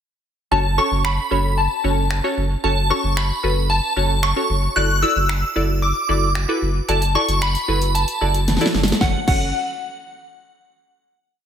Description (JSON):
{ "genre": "dance-pop", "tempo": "113 BPM", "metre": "4/4", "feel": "straight", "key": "F# minor", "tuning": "A4 = 440 Hz", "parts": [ { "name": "shimmering bell with halo", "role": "melody", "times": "0.5-9.5 s", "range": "F#5 to F#6", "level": "-21 LUFS", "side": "equal", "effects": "ensemble chorus, phaser, tape echo, slapback echo" }, { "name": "wavetable chord stab", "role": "accompaniment", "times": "0.5-9.5 s", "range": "C#4 to D5", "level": "-25 LUFS", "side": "equal", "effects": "sidechain pumping, slapback echo" }, { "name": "saturated sub bass", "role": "bass", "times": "0.5-9.5 s", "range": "F#1", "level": "-21 LUFS", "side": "equal", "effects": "sidechain pumping" }, { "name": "pop drum kit", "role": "drums", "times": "1.0-9.4 s", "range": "crash cymbal, finger snaps, hi-hat, kick drum, snare drum", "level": "-23 LUFS", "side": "equal", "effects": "none" } ], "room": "moderate lush hall reverb, RT60 1.6 s, digital ambience", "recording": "big arena sound", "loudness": "-17 LUFS", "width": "side -8 dB against mid", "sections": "0.5-9.0 verse; 9.0-11.1 final chord", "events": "drum fill 8.5-9.0", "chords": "0.5 F#m; 4.8 Dadd9/F#; 9.0 F#m", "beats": "| 0.52 1.05 1.58 2.11 | 2.64 3.17 3.70 4.23 | 4.76 5.29 5.83 6.36 | 6.89 7.42 7.95 8.48 | 9.01" }